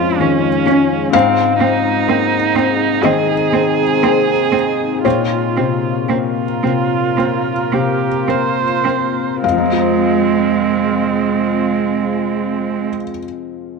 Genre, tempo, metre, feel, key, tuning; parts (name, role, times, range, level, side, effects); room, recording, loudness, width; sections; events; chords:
neoclassical piano and strings; 52-64 BPM; 4/4; rubato; F minor; A4 = 441 Hz
felt-muted upright piano; accompaniment; 0.0-13.8 s; F2 to F5; -18 LUFS; left 11 dB
muted viola; accompaniment; 0.0-12.9 s; C4 to C5; -19 LUFS; right 10 dB
deep dark ambient pad; sustained chords; 0.0-12.9 s; Ab3 to Bb4; -23 LUFS; left 2 dB; chorus, built-in reverb
muted cello; second line; 0.2-12.9 s; Ab3 to Db4; -19 LUFS; right 9 dB
moderate spring reverb, RT60 1.7 s, studio reverb; 1960s-style stereo with parts hard left and right; -13 LUFS; side -4 dB against mid
0.0-9.4 A section; 9.4-13.8 B section
slowing down 0.0-9.4
0.0 Db6/F; 1.1 Ab6; 5.0 Bbmadd9; 9.4 Fm